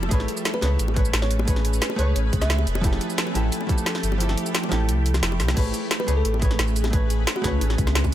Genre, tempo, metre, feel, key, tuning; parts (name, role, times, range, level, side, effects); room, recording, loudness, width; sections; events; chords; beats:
liquid drum and bass; 176 BPM; 4/4; straight; A major; A4 = 440 Hz
hollow-body jazz guitar; accompaniment; 0.0-8.1 s; F3 to C#5; -29 LUFS; equal; vintage 12-bit sampler grit, tape echo
shimmering ambient pad; sustained chords; 0.0-8.1 s; F3 to B4; -30 LUFS; equal; chorus, built-in reverb, phaser, vintage 12-bit sampler grit, sidechain pumping
sub bass with octave; bass; 0.0-8.1 s; F1 to C#2; -23 LUFS; equal
bongos; percussion; 0.0-8.1 s; -34 LUFS; left 5 dB
drum and bass drum kit; drums; 0.1-8.1 s; crash cymbal, hi-hat, shaker, snare drum; -27 LUFS; equal; overdrive
electronic kick drum; drums; 0.1-8.1 s; -23 LUFS; equal
bell-like FM electric piano; melody; 0.5-2.7, 6.0-7.6 s; F#4 to E5; -32 LUFS; equal; chorus, digital delay
little or no reverb; -20 LUFS; side -12 dB against mid
0.0-5.6 A section; 5.6-8.1 A section
drop 0.0-5.6, 5.6-8.1; kick drops out 4.2-5.6; drum fill 5.4
0.1 Amaj9; 2.7 Fmaj9; 5.6 Amaj9
| 0.11 0.45 0.80 1.14 | 1.48 1.82 2.16 2.50 | 2.84 3.18 3.52 3.86 | 4.20 4.54 4.89 5.23 | 5.57 5.91 6.25 6.59 | 6.93 7.27 7.61 7.95